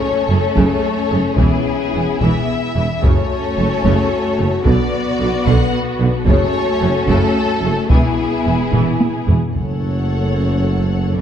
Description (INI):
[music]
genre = cinematic, epic orchestral film score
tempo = 74 BPM (dotted quarters)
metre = 6/8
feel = straight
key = F# minor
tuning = A4 = 439 Hz
[part]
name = rich studio violin section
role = melody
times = 0.0-11.2 s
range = G#4 to F#5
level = -24 LUFS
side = left 5 dB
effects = none
[part]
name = warm symphonic violin section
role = second line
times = 0.0-11.2 s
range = B3 to C#5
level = -24 LUFS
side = left 2 dB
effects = none
[part]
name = rich symphonic viola section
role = accompaniment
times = 0.0-11.2 s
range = C#3 to A4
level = -23 LUFS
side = right 1 dB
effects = none
[part]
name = mellow French horn section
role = sustained chords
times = 0.0-11.2 s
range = F#3 to A4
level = -23 LUFS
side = left 4 dB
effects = none
[part]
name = dark tuba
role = bass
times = 0.3-11.2 s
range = E1 to B1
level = -22 LUFS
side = right 2 dB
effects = none
[part]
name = rich chamber double bass section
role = bass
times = 0.3-11.2 s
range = E1 to B1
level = -23 LUFS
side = right 2 dB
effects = none
[part]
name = rich studio cello section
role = bass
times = 0.3-11.2 s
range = E2 to B2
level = -22 LUFS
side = right 2 dB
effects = none
[part]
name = taiko ensemble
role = drums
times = 0.6-11.0 s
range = none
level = -19 LUFS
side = equal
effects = none
[sound]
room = moderate scoring stage reverb, RT60 1.6 s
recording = dark, warm production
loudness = -14 LUFS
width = side -9 dB against mid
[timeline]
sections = 0.0-9.6 A section; 9.6-11.2 B section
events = drum fill 8.7-9.6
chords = 0.0 F#m; 1.4 E; 3.0 F#m; 4.7 Bm; 6.3 F#m; 7.9 E; 9.6 F#m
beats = 0.56 | 1.38 2.21 | 3.03 3.85 | 4.66 5.47 | 6.27 7.08 | 7.90 8.73 | 9.55 10.37 | 11.18